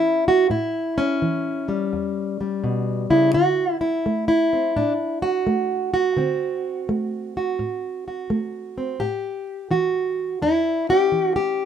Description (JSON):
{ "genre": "acoustic country blues, solo or duo", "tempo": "85 BPM", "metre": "4/4", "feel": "swing 66% on 8ths", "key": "A mixolydian", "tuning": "A4 = 440 Hz", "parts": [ { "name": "fingerpicked plugged-in old ladder-braced acoustic guitar", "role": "solo", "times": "0.0-11.7 s", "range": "E2 to G4", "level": "-20 LUFS", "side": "equal", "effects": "none" } ], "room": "light reverb", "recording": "minimal, uncompressed stereo recording", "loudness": "-20 LUFS", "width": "side -8 dB against mid", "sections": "0.0-11.7 A section", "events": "none", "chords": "0.0 A7; 3.3 D7; 9.0 A7", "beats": "| 0.50 1.21 1.92 2.63 | 3.34 4.05 4.75 5.46 | 6.17 6.88 7.59 8.30 | 9.01 9.72 10.42 11.13" }